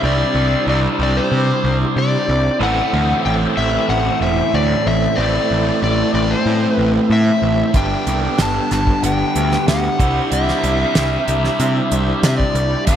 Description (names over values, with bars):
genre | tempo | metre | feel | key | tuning
psychedelic rock | 93 BPM | 4/4 | straight | unclear | A4 = 440 Hz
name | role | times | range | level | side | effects
overdriven slide guitar | melody | 0.0-13.0 s | C5 to A5 | -20 LUFS | left 2 dB | diffuse ambient delay
tonewheel organ | sustained chords | 0.0-13.0 s | B3 to C5 | -25 LUFS | right 4 dB | overdrive, chorus vibrato, slow rotary speaker
overdriven electric guitar | riff | 0.0-13.0 s | G2 to E4 | -20 LUFS | right 1 dB | phaser
fuzz picked electric bass | bass | 0.0-13.0 s | E1 to C3 | -19 LUFS | equal | overdrive
damped 70s drum kit | drums | 7.7-13.0 s | hi-hat, kick drum, snare drum | -19 LUFS | right 1 dB | none
room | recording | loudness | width
moderate lush hall reverb, RT60 2.2 s | dreamy mix soaked in reverb | -14 LUFS | side -9 dB against mid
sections
0.0-13.0 A section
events
none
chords
0.0 Cadd9; 2.6 Am; 7.8 G; 10.0 Cadd9